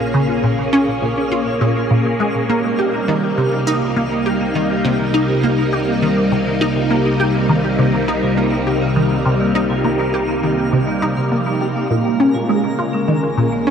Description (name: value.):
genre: ambient, sequencer-driven space music.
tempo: 102 BPM.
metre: 4/4.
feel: straight.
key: unclear.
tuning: A4 = 440 Hz.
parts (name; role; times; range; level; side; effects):
phased string machine; sustained chords; 0.0-13.7 s; C3 to Ab4; -18 LUFS; equal; ensemble chorus, phaser.
vibraphone with hard mallets; arpeggios; 0.0-13.6 s; F3 to Bb4; -29 LUFS; right 1 dB; auto-pan, analog delay.
resonant blip pluck; riff; 0.0-13.7 s; Bb2 to G4; -18 LUFS; equal; phaser, ensemble chorus, analog delay.
analog drone; bass; 0.0-13.7 s; Bb1 to C2; -31 LUFS; equal; chorus.
twinkling granular texture; texture; 0.0-13.7 s; F5 to Bb5; -34 LUFS; right 1 dB; built-in reverb.
room: wet cathedral reverb, RT60 6.1 s.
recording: in a vast, echoing space.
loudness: -15 LUFS.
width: side -7 dB against mid.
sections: 0.0-13.7 A section.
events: fade-in on vibraphone 0.0-13.7; fade-in on synth drone 0.0-13.7; fade-in on synth texture 0.0-13.7.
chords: 0.0 Bbm7; 2.5 Cm7; 11.9 Bbm7.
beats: | 0.14 0.73 1.32 1.91 | 2.49 3.08 3.67 4.26 | 4.85 5.43 6.02 6.61 | 7.20 7.79 8.38 8.96 | 9.55 10.14 10.73 11.32 | 11.90 12.49 13.08 13.67.